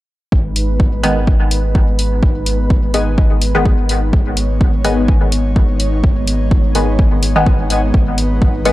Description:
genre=dub techno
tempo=126 BPM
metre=4/4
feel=swing 55% on 16ths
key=G# minor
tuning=A4 = 440 Hz
part: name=airy breathy pad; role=sustained chords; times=0.3-8.7 s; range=G#3 to C#5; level=-22 LUFS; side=equal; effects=chorus, sidechain pumping
part: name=soft dub sub bass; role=bass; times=0.3-8.7 s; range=G#1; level=-18 LUFS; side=equal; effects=sidechain pumping
part: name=electronic kick drum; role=drums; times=0.3-8.5 s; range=none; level=-13 LUFS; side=equal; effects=overdrive
part: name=electronic hi-hat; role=drums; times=0.6-8.7 s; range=none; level=-22 LUFS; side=left 1 dB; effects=none
part: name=warbly dusty pluck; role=riff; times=1.0-8.7 s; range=B4 to G#5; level=-26 LUFS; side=left 3 dB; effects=analog chorus, cassette tape, sidechain pumping, dub echo
part: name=filtered dub chord stab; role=stabs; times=1.0-8.7 s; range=D#3 to B3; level=-19 LUFS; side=left 1 dB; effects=chorus, phaser, sidechain pumping, dub echo
room=little or no reverb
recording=dry, gritty hardware recording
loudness=-12 LUFS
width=side -16 dB against mid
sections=0.3-8.7 A section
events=none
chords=0.3 G#m

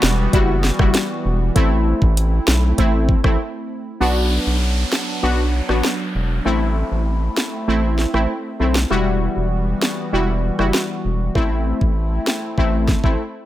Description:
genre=dancehall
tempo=98 BPM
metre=4/4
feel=straight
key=A dorian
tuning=A4 = 439 Hz
part: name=lush unison pad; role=sustained chords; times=0.0-13.5 s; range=E3 to F#4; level=-27 LUFS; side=equal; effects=chorus, sidechain pumping
part: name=round analog bass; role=bass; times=0.0-13.2 s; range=E1 to B1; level=-19 LUFS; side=equal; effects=none
part: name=island pop drum kit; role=drums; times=0.0-13.2 s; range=hi-hat, kick drum, rim click, snare drum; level=-18 LUFS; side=equal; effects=none
part: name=synth brass stab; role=accompaniment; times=0.3-13.2 s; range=G3 to F#4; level=-21 LUFS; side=left 1 dB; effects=chorus
part: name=downlifter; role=sound effects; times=4.0-8.9 s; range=none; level=-29 LUFS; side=equal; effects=none
room=little or no reverb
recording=none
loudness=-16 LUFS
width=side -14 dB against mid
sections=0.0-4.0 A section; 4.0-13.5 B section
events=break 3.4-4.0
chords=0.0 Emadd9; 1.6 Am; 4.0 Bm; 6.5 Am; 8.9 Emadd9; 11.4 Am

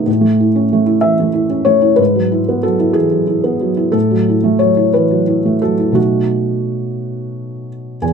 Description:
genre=neoclassical minimalist piano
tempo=58-63 BPM (dotted quarters)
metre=6/8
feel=rubato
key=unclear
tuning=A4 = 440 Hz
part: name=felt-muted upright piano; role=solo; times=0.0-8.1 s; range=E2 to G#5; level=-12 LUFS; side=equal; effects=none
room=light reverb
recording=close, detailed microphones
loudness=-12 LUFS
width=side -6 dB against mid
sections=0.0-8.0 A section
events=none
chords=0.1 A; 2.0 Eadd9/G#; 3.9 F#m7/A; 6.0 B7

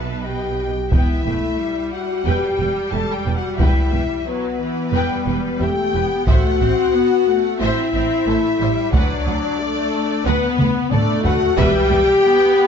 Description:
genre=cinematic, epic orchestral film score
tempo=90 BPM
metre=4/4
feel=straight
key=E minor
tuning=A4 = 440 Hz
part: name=rich studio violin section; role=melody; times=0.0-12.7 s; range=B4 to A5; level=-27 LUFS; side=left 4 dB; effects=none
part: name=rich symphonic violin section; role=second line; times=0.0-12.0 s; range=G4 to G5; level=-27 LUFS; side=left 2 dB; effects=none
part: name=bright symphonic viola section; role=accompaniment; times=0.0-12.7 s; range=E3 to B4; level=-26 LUFS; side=right 2 dB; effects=none
part: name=warm French horn section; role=sustained chords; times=0.0-12.7 s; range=B3 to A4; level=-19 LUFS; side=left 4 dB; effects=none
part: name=rich studio cello section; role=bass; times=0.0-12.0 s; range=D2 to B2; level=-27 LUFS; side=right 5 dB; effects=none
part: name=rich symphonic double bass section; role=bass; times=0.0-12.0 s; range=E1 to D2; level=-24 LUFS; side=right 5 dB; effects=none
part: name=taiko ensemble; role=drums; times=0.9-12.2 s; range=none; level=-19 LUFS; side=equal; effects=none
room=moderate scoring stage reverb, RT60 1.6 s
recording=dark, warm production, nothing above 7.7 kHz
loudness=-16 LUFS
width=side -7 dB against mid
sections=0.9-12.7 A section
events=drum fill 10.6-11.6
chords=0.0 B7; 0.9 Em; 6.3 Am; 8.9 D6; 11.6 Em

